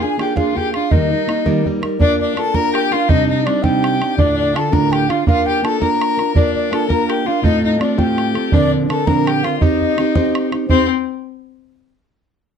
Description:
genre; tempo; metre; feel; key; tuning
celtic folk, Celtic jig; 110 BPM (dotted quarters); 6/8; straight; C dorian; A4 = 439 Hz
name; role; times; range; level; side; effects
baroque flute; melody; 0.0-10.9 s; C5 to Bb5; -20 LUFS; left 2 dB; none
rich fiddle; second line; 0.0-10.9 s; C4 to Bb4; -22 LUFS; left 9 dB; none
fingerpicked plugged-in steel-string acoustic guitar; accompaniment; 0.0-10.9 s; D2 to C5; -17 LUFS; right 2 dB; none
bodhran; percussion; 0.2-10.9 s; none; -18 LUFS; right 2 dB; none
room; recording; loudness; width
light reverb; close, detailed microphones; -14 LUFS; side -7 dB against mid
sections
0.0-2.0 A section; 2.0-10.7 B section; 10.7-11.8 C section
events
none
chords
0.0 Bb7; 0.9 Eb; 2.0 Bb; 3.1 Cmadd9; 4.2 Dm; 5.3 Bb; 7.4 F/A; 8.5 Bbadd9; 9.6 Cm

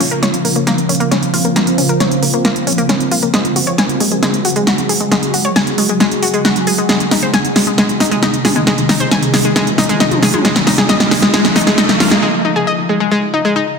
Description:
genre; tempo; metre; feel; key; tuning
uplifting trance; 135 BPM; 4/4; straight; Bb minor; A4 = 439 Hz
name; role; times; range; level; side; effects
shimmering ambient pad; sustained chords; 0.0-12.2 s; C3 to Ab4; -18 LUFS; equal; chorus, built-in reverb, phaser
analog pluck; arpeggios; 0.0-13.6 s; Ab3 to Ab5; -17 LUFS; left 2 dB; chorus, tape echo
solid FM bass; bass; 0.0-12.2 s; Gb1 to Db2; -30 LUFS; equal; none
big-room dance drum kit; drums; 0.0-12.2 s; hi-hat, snare drum, toms; -14 LUFS; right 1 dB; overdrive
riser; sound effects; 8.7-12.2 s; none; -21 LUFS; equal; none
room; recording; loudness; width
wet recital hall reverb, RT60 1.4 s; dense, heavily limited modern master; -11 LUFS; side -5 dB against mid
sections
0.0-13.8 A section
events
build-up 0.0-13.8; drum fill 0.0-12.2; filter sweep on synth pluck 0.0-13.8; riser 8.7-12.2; break 12.2-13.8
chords
0.0 Bbmadd9; 3.3 Gbsus2; 6.9 Ab; 10.4 Dbadd9

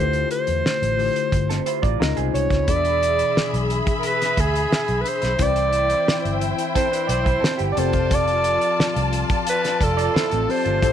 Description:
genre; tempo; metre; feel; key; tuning
lush 1970s-style soul; 88 BPM; 4/4; straight; unclear; A4 = 440 Hz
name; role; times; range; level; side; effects
warm alto saxophone; melody; 0.0-10.9 s; G#4 to D5; -22 LUFS; right 1 dB; none
barky tine electric piano; accompaniment; 0.0-10.9 s; B2 to E5; -28 LUFS; left 15 dB; overdrive, phaser
vintage muted fingered electric bass; bass; 0.0-10.9 s; F1 to E2; -24 LUFS; right 1 dB; none
cloth-damped thuddy drum kit; drums; 0.1-10.9 s; hi-hat, kick drum, snare drum; -24 LUFS; equal; none
electric guitar through a small old amp; riff; 1.5-2.7, 6.7-10.9 s; A3 to D5; -27 LUFS; right 16 dB; lush chorus
warm studio string section; second line; 2.7-10.9 s; E4 to B5; -26 LUFS; left 2 dB; none
room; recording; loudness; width
studio reverb; 1960s-style stereo with parts hard left and right; -18 LUFS; side -9 dB against mid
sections
0.0-2.7 A section; 2.7-10.9 B section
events
none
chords
0.0 Dm11; 2.0 Dbmaj9; 2.7 E7; 5.4 Cmaj7; 7.8 F6

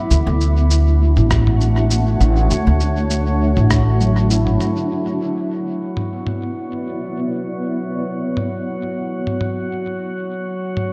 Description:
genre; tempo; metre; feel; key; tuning
ambient dub; 100 BPM; 4/4; swing 54% on 16ths; unclear; A4 = 440 Hz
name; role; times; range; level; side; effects
granular cloud pad; sustained chords; 0.0-10.9 s; A3 to D6; -25 LUFS; equal; built-in reverb
upright bass; bass; 0.1-4.6 s; A1 to D2; -17 LUFS; equal; none
lo-fi sampler-style drum kit; drums; 0.1-10.9 s; rim click, shaker, toms; -27 LUFS; equal; dub echo
electronic kick drum; drums; 1.3-3.8 s; none; -23 LUFS; equal; none
handpan; arpeggios; 3.1-5.5 s; F#3 to E4; -28 LUFS; equal; tape echo
drifting glass-harmonics texture; texture; 5.4-10.9 s; F#3 to F#4; -29 LUFS; equal; chorus, built-in reverb
room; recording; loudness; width
moderate concert hall reverb, RT60 2.2 s; dark, warm production; -19 LUFS; mono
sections
0.0-4.9 A section; 4.9-10.9 B section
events
none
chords
0.1 Dmaj7; 4.9 E5; 9.7 Dmaj7

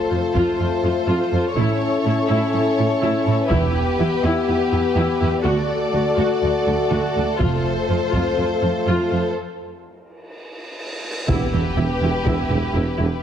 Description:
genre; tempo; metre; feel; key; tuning
cinematic, epic orchestral film score; 123 BPM; 4/4; straight; E dorian; A4 = 440 Hz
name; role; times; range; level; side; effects
warm symphonic violin section; melody; 0.0-13.2 s; B4 to D5; -26 LUFS; left 2 dB; none
warm symphonic violin section; second line; 0.0-13.2 s; G4 to A4; -27 LUFS; equal; none
dark French horn section; sustained chords; 0.0-12.4 s; A3 to G4; -24 LUFS; left 4 dB; none
rich symphonic viola section; accompaniment; 0.1-13.0 s; E4 to F#4; -26 LUFS; equal; none
warm studio cello section; bass; 0.1-13.1 s; D2 to A2; -23 LUFS; right 2 dB; none
solo taiko drums; drums; 0.3-0.6, 3.5-4.4, 7.4-8.4, 11.3-12.7 s; none; -26 LUFS; equal; none
clear symphonic double bass section; bass; 1.6-7.6, 11.3-13.1 s; E1 to D2; -25 LUFS; right 3 dB; none
cymbal swell and impact; sound effects; 10.1-13.2 s; none; -31 LUFS; equal; none
warm tuba; bass; 11.3-13.1 s; E1; -26 LUFS; right 3 dB; none
room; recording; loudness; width
moderate scoring stage reverb, RT60 1.7 s; heavily compressed radio sound; -17 LUFS; side -9 dB against mid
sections
0.0-11.3 A section; 11.3-13.2 B section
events
build-up 0.0-11.3; break 9.3-11.3; cymbal swell 10.1-11.3; impact 11.3-13.2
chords
0.0 F; 1.6 A; 3.5 Em; 5.5 D; 7.4 F; 9.3 N.C.; 11.3 Em

